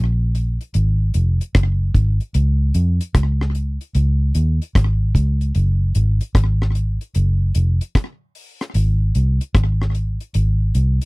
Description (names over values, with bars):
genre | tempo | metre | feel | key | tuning
roots reggae | 75 BPM | 4/4 | swing 65% on 16ths | Ab mixolydian | A4 = 441 Hz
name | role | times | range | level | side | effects
vintage muted fingered electric bass | bass | 0.0-11.0 s | F1 to F2 | -16 LUFS | equal | none
deep reggae drum kit | drums | 0.3-11.1 s | hi-hat, kick drum, rim click | -19 LUFS | equal | slapback echo
room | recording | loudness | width
little or no reverb | dry, close 1970s-style studio recording | -16 LUFS | side -27 dB against mid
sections
0.0-11.1 A section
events
none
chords
none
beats
0.75 1.55 | 2.35 3.15 3.95 4.75 | 5.55 6.35 7.15 7.95 | 8.75 9.55 10.35